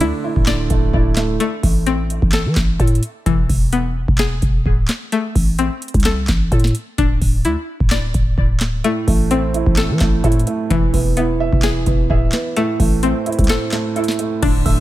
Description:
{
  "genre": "hip hop, trap",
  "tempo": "129 BPM",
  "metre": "4/4",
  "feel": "half-time",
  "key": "A harmonic minor",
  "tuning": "A4 = 441 Hz",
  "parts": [
    { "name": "felt-muted upright piano", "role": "accompaniment", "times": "0.0-1.4, 8.8-14.8 s", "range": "A2 to E5", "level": "-21 LUFS", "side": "right 5 dB", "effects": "dub echo" },
    { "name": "string-like resonator pluck", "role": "arpeggios", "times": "0.0-14.8 s", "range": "E3 to D5", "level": "-23 LUFS", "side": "left 5 dB", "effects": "chorus, dub echo" },
    { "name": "growling 808-style bass", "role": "bass", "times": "0.0-14.8 s", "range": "D1 to E3", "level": "-18 LUFS", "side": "equal", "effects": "none" },
    { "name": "booming analog drum machine", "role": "drums", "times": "0.0-14.8 s", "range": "crash cymbal, handclaps, hi-hat, kick drum, snare drum", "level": "-18 LUFS", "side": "equal", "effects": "overdrive" },
    { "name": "dark chamber string section", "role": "sustained chords", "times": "14.4-14.8 s", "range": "F3 to E5", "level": "-32 LUFS", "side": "left 3 dB", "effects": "none" },
    { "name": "delicate synth tine bell", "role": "second line", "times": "14.7-14.8 s", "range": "E6", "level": "-36 LUFS", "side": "right 1 dB", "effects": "none" }
  ],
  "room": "digital ambience",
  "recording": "echo-heavy mix",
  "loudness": "-15 LUFS",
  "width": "side -15 dB against mid",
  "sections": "0.0-14.4 A section",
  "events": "break 13.5-14.4",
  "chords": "0.0 Dsus2; 1.4 Am; 3.3 E; 5.1 Am; 7.0 Dsus2; 8.8 Am; 10.7 E; 12.6 Am"
}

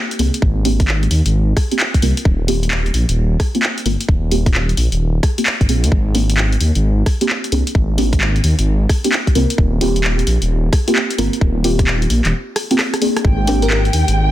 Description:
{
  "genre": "UK garage, two-step garage",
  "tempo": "131 BPM",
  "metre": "4/4",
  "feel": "swing 65% on 16ths",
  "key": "Eb major",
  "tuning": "A4 = 440 Hz",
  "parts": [
    { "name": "punchy analog drum machine", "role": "drums", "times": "0.1-14.1 s", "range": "handclaps, hi-hat, rim click", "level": "-20 LUFS", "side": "equal", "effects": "none" },
    { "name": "deep mellow chord stab", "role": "stabs", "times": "0.2-14.3 s", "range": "Bb3 to Bb4", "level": "-21 LUFS", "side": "equal", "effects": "chorus, tape echo" },
    { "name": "dark detuned saw bass", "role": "bass", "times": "0.2-14.3 s", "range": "Eb1 to Eb2", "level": "-16 LUFS", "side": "equal", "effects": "tube saturation" },
    { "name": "electronic kick drum", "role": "drums", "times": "0.4-13.4 s", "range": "none", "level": "-15 LUFS", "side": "equal", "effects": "none" },
    { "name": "dark symphonic violin section", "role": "sustained chords", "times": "13.2-14.3 s", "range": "G5", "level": "-23 LUFS", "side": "right 2 dB", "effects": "vintage 12-bit sampler grit, sidechain pumping" },
    { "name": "bell-like FM electric piano", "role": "melody", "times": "13.6-13.8 s", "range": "Bb4", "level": "-23 LUFS", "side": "left 5 dB", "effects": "chorus, phaser, tape echo" }
  ],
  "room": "light reverb, digital ambience",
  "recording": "dense, heavily limited modern master",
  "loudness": "-14 LUFS",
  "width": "side -14 dB against mid",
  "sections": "0.0-14.3 A section",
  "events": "filter sweep on synth stab 0.0-14.3; break 12.3-13.2; drum fill 12.8-13.2",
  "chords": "0.0 Abmaj9#11; 2.3 Eb69; 5.9 Abmaj9#11; 9.6 Eb69; 13.2 Abmaj9#11"
}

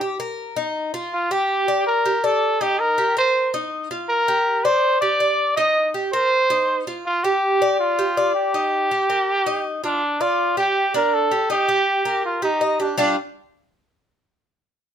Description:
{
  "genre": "latin",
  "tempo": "162 BPM",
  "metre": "4/4",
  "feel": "straight",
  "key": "G minor",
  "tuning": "A4 = 439 Hz",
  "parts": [
    { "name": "warm trumpet", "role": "melody", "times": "0.0-13.2 s", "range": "D4 to Eb5", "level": "-19 LUFS", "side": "right 1 dB", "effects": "none" },
    { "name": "Cuban tres", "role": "arpeggios", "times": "0.0-13.2 s", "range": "G3 to Eb5", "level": "-23 LUFS", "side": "left 1 dB", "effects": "none" }
  ],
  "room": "light reverb",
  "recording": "none",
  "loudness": "-18 LUFS",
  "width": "side -8 dB against mid",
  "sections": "0.0-10.0 A section; 10.0-13.0 B section; 13.0-14.5 C section",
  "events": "none",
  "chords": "0.0 Ebadd9; 1.1 Gm; 2.6 Cm7; 4.1 Gm7; 5.6 Cm7; 7.1 G5; 8.5 Ebadd9; 10.0 G5; 11.5 Eb; 13.0 G5"
}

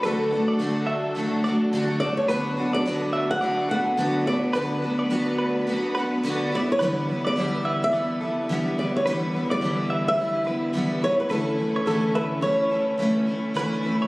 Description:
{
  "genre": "pop",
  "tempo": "106 BPM",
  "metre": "4/4",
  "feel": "swing 60% on 16ths",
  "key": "D major",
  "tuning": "A4 = 440 Hz",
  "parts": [
    { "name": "picked steel-string acoustic guitar", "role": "accompaniment", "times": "0.0-14.1 s", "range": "D3 to F#4", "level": "-25 LUFS", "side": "equal", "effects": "double-tracked left and right" },
    { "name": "warm studio string section", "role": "sustained chords", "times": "0.0-14.1 s", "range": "D2 to B4", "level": "-32 LUFS", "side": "equal", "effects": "none" },
    { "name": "direct-recorded clean electric guitar", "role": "arpeggios", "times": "0.0-14.1 s", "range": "A4 to E5", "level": "-32 LUFS", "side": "right 1 dB", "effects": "spring reverb, digital delay" },
    { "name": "flamenco guitar", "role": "melody", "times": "0.1-14.1 s", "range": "A4 to F#5", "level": "-26 LUFS", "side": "equal", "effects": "digital delay" }
  ],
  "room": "light reverb, studio reverb",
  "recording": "recorded on a phone in the room",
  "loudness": "-22 LUFS",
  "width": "side -21 dB against mid",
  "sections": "0.0-14.1 A section",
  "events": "none",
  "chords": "0.0 D; 6.5 Em/D; 11.3 A/D"
}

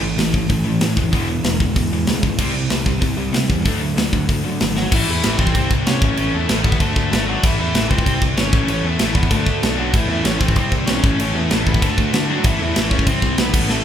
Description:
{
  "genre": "punk rock",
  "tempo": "191 BPM",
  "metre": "4/4",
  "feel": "straight",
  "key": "unclear",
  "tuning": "A4 = 440 Hz",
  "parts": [
    { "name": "distorted electric guitar", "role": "riff", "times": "0.0-13.8 s", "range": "A2 to F#4", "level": "-26 LUFS", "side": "right 5 dB", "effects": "distortion" },
    { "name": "fuzz guitar", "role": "riff", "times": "0.0-4.9, 9.9-13.8 s", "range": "A2 to F#4", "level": "-27 LUFS", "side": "right 1 dB", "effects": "distortion" },
    { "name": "tight distorted guitar", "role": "riff", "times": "0.0-13.8 s", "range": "E2 to D4", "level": "-25 LUFS", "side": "left 9 dB", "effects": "distortion" },
    { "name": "fuzz picked electric bass", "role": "bass", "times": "0.0-13.8 s", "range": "E1 to D3", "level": "-23 LUFS", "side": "equal", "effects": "overdrive" },
    { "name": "tight metal drum kit", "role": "drums", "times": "0.2-13.8 s", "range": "crash cymbal, hi-hat, kick drum, snare drum", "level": "-18 LUFS", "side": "equal", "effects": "none" },
    { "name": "crunchy overdriven guitar", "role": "melody", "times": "4.8-13.8 s", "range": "E3 to C#5", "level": "-23 LUFS", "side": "equal", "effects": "none" }
  ],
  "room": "light reverb",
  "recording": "band playing live in one room",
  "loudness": "-15 LUFS",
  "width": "side -9 dB against mid",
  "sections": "0.0-4.9 A section; 4.9-13.8 B section",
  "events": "drum fill 4.8",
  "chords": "0.0 A; 1.1 E; 2.4 C; 3.7 D; 4.9 A; 5.5 C; 6.0 A; 6.8 D; 7.4 A; 8.1 C; 8.5 A; 9.3 D; 9.9 A; 10.6 C; 11.0 A; 11.8 D; 12.4 A; 13.1 C"
}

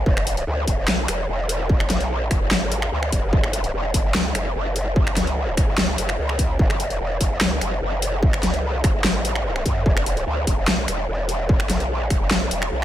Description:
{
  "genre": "heavy wobble dubstep",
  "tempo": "147 BPM",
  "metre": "4/4",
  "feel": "half-time",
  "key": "F# minor",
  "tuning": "A4 = 440 Hz",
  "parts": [
    { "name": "growl bass", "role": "bass", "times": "0.0-12.8 s", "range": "E1 to F#2", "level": "-23 LUFS", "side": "equal", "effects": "chorus, overdrive" },
    { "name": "electronic kick drum", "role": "drums", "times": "0.1-12.2 s", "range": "none", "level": "-21 LUFS", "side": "equal", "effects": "distortion, studio reverb" },
    { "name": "dubstep drum kit", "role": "drums", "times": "0.2-12.8 s", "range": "finger snaps, handclaps, hi-hat, snare drum", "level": "-24 LUFS", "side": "equal", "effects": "studio reverb" }
  ],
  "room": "digital ambience",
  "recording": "none",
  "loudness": "-19 LUFS",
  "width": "side -12 dB against mid",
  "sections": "0.0-12.8 A section",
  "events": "none",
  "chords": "none"
}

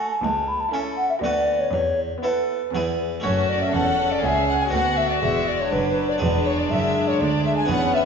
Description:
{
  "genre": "classical, baroque-style concerto movement with solo episodes",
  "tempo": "121 BPM",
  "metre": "3/4",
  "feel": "straight",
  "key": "unclear",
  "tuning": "A4 = 444 Hz",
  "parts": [
    { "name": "mellow hollow wooden flute", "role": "melody", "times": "0.0-8.1 s", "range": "B4 to B5", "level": "-23 LUFS", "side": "left 1 dB", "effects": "none" },
    { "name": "warm chamber violin section", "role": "melody", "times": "0.0-8.0 s", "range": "G#4 to G#5", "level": "-31 LUFS", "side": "left 3 dB", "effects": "none" },
    { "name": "rich chamber violin section", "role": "second line", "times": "0.0-8.1 s", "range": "B3 to A4", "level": "-26 LUFS", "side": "left 1 dB", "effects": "none" },
    { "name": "dark chamber viola section", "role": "accompaniment", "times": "0.0-8.1 s", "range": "F#3 to C#4", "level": "-29 LUFS", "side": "right 1 dB", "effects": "none" },
    { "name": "harpsichord", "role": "accompaniment", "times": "0.0-8.1 s", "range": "C#2 to B4", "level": "-30 LUFS", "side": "equal", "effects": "none" },
    { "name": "rich chamber cello section", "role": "bass", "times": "0.2-8.1 s", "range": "C#2 to F#2", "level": "-30 LUFS", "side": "right 1 dB", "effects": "none" },
    { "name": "rich chamber double bass section", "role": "bass", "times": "3.2-8.1 s", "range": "E1 to D2", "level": "-28 LUFS", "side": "right 3 dB", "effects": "none" }
  ],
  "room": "wet recital hall reverb, RT60 1.7 s",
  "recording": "recorded in a church or concert hall, nothing above 7.8 kHz",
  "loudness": "-19 LUFS",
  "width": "side -6 dB against mid",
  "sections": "0.0-3.2 A section; 3.2-8.1 A section",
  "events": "none",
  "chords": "0.2 A/C#; 1.2 Bm/D; 1.7 Esus4; 2.7 E; 3.2 F#m; 4.7 E"
}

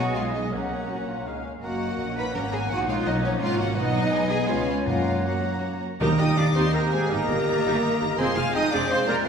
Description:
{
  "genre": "quick classical-period movement for symphony orchestra",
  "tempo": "166 BPM",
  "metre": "3/4",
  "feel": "rubato",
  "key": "F# major, Eb major from 6.0 s",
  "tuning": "A4 = 440 Hz",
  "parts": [
    { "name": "clear studio violin section", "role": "melody", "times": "0.0-9.3 s", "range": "C#5 to F6", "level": "-34 LUFS", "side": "left 3 dB", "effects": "none" },
    { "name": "hollow concert flute", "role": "second line", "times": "0.0-9.3 s", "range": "C5 to B5", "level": "-34 LUFS", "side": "equal", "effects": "none" },
    { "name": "mellow clarinet", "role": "second line", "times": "0.0-9.3 s", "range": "E#3 to G4", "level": "-34 LUFS", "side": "left 2 dB", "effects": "none" },
    { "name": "warm chamber violin section", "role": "second line", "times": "0.0-9.3 s", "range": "Ab4 to B5", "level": "-34 LUFS", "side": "left 4 dB", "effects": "none" },
    { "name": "warm oboe", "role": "second line", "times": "0.0-9.3 s", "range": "D5 to A#5", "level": "-35 LUFS", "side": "right 1 dB", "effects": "none" },
    { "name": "mellow bassoon", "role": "accompaniment", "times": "0.0-9.3 s", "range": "F#3 to F#4", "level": "-35 LUFS", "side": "right 2 dB", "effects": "none" },
    { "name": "rich chamber viola section", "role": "accompaniment", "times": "0.0-9.3 s", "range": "G#3 to Ab4", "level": "-33 LUFS", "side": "right 1 dB", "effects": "none" },
    { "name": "warm French horn section", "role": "sustained chords", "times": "0.0-9.3 s", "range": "Eb3 to G4", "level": "-32 LUFS", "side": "left 3 dB", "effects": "none" },
    { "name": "warm trumpet section", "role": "stabs", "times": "0.0-9.3 s", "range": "Ab4 to G#5", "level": "-32 LUFS", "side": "right 3 dB", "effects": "none" },
    { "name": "warm chamber cello section", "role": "bass", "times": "0.0-9.3 s", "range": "Ab3 to B4", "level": "-30 LUFS", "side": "right 2 dB", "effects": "none" },
    { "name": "warm chamber double bass section", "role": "bass", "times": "0.0-9.3 s", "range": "F1 to B2", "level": "-31 LUFS", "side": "right 1 dB", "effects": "none" },
    { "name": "timpani", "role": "percussion", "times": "0.5-1.0, 4.9-6.5 s", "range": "F#2 to Eb3", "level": "-27 LUFS", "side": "right 1 dB", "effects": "none" }
  ],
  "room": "wet scoring stage reverb, RT60 1.6 s",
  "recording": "heard from further back in the room",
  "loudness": "-22 LUFS",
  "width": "side -6 dB against mid",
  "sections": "0.0-6.0 A section; 6.0-9.3 B section",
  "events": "none",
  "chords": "0.2 G#m/B; 0.5 F#/C#; 1.3 C#; 1.6 F#; 2.7 F#/A#; 3.8 B; 4.1 G#m/B; 4.5 C#7; 4.9 F#; 6.0 Eb; 7.1 Eb/G; 8.2 Fm"
}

